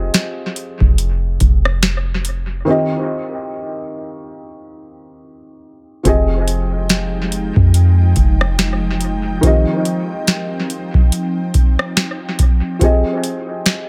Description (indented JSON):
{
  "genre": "contemporary R&B",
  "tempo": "71 BPM",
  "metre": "4/4",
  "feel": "swing 58% on 16ths",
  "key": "F minor",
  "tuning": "A4 = 445 Hz",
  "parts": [
    { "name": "felt-muted upright piano", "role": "accompaniment", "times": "0.0-13.9 s", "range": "Eb3 to Eb5", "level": "-23 LUFS", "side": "equal", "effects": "analog delay" },
    { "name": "soft 808-style bass", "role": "bass", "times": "0.0-9.4 s", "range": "F1 to F2", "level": "-18 LUFS", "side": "equal", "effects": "none" },
    { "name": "booming analog drum machine", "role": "drums", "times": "0.1-13.9 s", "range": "hi-hat, kick drum, rim click, snare drum", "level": "-17 LUFS", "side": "equal", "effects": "analog delay" },
    { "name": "ethereal airy pad", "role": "sustained chords", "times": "6.6-12.8 s", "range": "F3 to G5", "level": "-26 LUFS", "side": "equal", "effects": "ensemble chorus, built-in reverb" }
  ],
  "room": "little or no reverb",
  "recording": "echo-heavy mix",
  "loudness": "-16 LUFS",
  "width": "mono",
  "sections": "0.0-13.9 A section",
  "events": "break 2.7-6.1",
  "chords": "0.0 Fm9; 2.7 Eb69; 6.1 Fm9; 9.4 Eb69; 12.8 Fm9",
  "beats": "0.14 0.98 1.83 | 2.67 3.52 4.36 5.21 | 6.05 6.90 7.74 8.59 | 9.43 10.28 11.12 11.97 | 12.81 13.66"
}